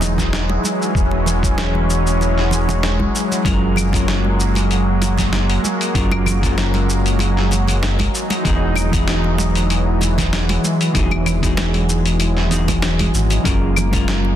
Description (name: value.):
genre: sunset chillout.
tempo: 96 BPM.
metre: 4/4.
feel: swing 54% on 16ths.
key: unclear.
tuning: A4 = 440 Hz.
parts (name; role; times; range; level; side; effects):
lush unison pad; sustained chords; 0.0-14.4 s; E3 to D#4; -21 LUFS; equal; chorus, shimmer reverb.
round analog bass; bass; 0.0-14.4 s; E1 to G#1; -19 LUFS; equal; none.
dusty soul sampler-style drum kit; drums; 0.0-14.2 s; claves, hi-hat, shaker, snare drum; -23 LUFS; left 1 dB; none.
congas; percussion; 0.0-14.4 s; none; -27 LUFS; right 4 dB; none.
electronic kick drum; drums; 0.2-14.0 s; none; -22 LUFS; equal; none.
semi-hollow electric guitar; accompaniment; 3.4-14.4 s; E3 to A#4; -23 LUFS; equal; auto-pan, tape echo, shimmer reverb.
room: light reverb, digital ambience.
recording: dense, heavily limited modern master.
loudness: -15 LUFS.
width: side -11 dB against mid.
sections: 0.0-14.4 A section.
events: none.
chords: 0.0 Emaj9; 3.5 F#maj9; 8.1 Emaj9; 13.5 F#maj9.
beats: 0.33 | 0.95 1.58 2.20 2.83 | 3.45 4.08 4.70 5.33 | 5.95 6.58 7.20 7.83 | 8.45 9.08 9.70 10.33 | 10.95 11.58 12.20 12.83 | 13.45 14.08.